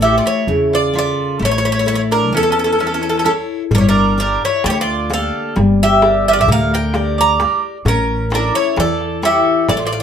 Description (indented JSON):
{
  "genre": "greek folk, Greek bouzouki band",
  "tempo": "130 BPM (eighths)",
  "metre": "9/8",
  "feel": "straight",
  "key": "unclear",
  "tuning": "A4 = 441 Hz",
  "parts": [
    { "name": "Greek bouzouki", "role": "melody", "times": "0.0-10.0 s", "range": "A4 to Bb5", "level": "-16 LUFS", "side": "equal", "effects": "none" },
    { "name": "mandolin", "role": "second line", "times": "0.0-10.0 s", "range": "C#4 to D5", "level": "-21 LUFS", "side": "right 4 dB", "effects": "none" },
    { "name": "picked steel-string acoustic guitar", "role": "accompaniment", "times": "0.0-10.0 s", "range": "C#3 to E5", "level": "-19 LUFS", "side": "left 2 dB", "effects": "none" },
    { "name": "upright bass", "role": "bass", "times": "0.0-10.0 s", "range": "G1 to E2", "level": "-21 LUFS", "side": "equal", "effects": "none" },
    { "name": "darbuka", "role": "percussion", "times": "3.7-9.9 s", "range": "none", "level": "-21 LUFS", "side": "left 1 dB", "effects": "none" }
  ],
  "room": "moderate studio ambience, RT60 0.5 s",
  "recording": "none",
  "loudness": "-13 LUFS",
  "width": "side -8 dB against mid",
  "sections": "0.0-10.0 A section",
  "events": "none",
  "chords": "0.0 A; 3.7 Gm; 7.9 A"
}